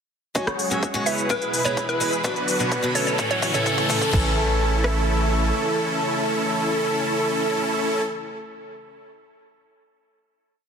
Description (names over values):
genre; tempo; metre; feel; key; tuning
EDM, festival progressive house; 127 BPM; 4/4; straight; A major; A4 = 440 Hz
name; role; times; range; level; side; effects
picked swing-style acoustic guitar; accompaniment; 0.3-8.0 s; A2 to E5; -29 LUFS; left 2 dB; sidechain pumping, tape echo
supersaw pad; sustained chords; 0.4-8.0 s; B2 to F#4; -31 LUFS; right 1 dB; sidechain pumping
wide unison lead; arpeggios; 0.4-8.0 s; F#4 to C#5; -27 LUFS; equal; sidechain pumping, tape echo
supersaw chords; riff; 0.4-8.0 s; C#4 to C#5; -26 LUFS; right 1 dB; wide subtle chorus, sidechain pumping, low-pass filter, tape echo
saturated sub bass; bass; 0.4-5.5 s; E1 to F#2; -26 LUFS; equal; sidechain pumping, high-pass filter
big-room dance drum kit; drums; 0.4-5.0 s; kick drum, rim click; -25 LUFS; equal; overdrive, high-pass filter on kick, high-pass filter on snare
pop drum kit; drums; 0.4-4.2 s; crash cymbal, hi-hat, rim click, shaker; -29 LUFS; left 2 dB; none
riser; sound effects; 2.2-4.1 s; none; -30 LUFS; right 1 dB; none
hollow square pluck; melody; 1.1-3.9 s; B4 to E5; -28 LUFS; right 1 dB; chorus, tape echo
room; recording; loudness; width
moderate digital room reverb, RT60 1.2 s, digital ambience; heavily compressed radio sound; -20 LUFS; side -6 dB against mid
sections
0.4-4.1 build; 4.1-7.9 final chord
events
build-up 0.4-4.1; filter sweep on supersaw synth 0.4-4.1; riser 2.2-4.1; drum fill 2.2-4.1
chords
0.4 F#sus2; 1.3 E; 2.2 Bm; 3.2 A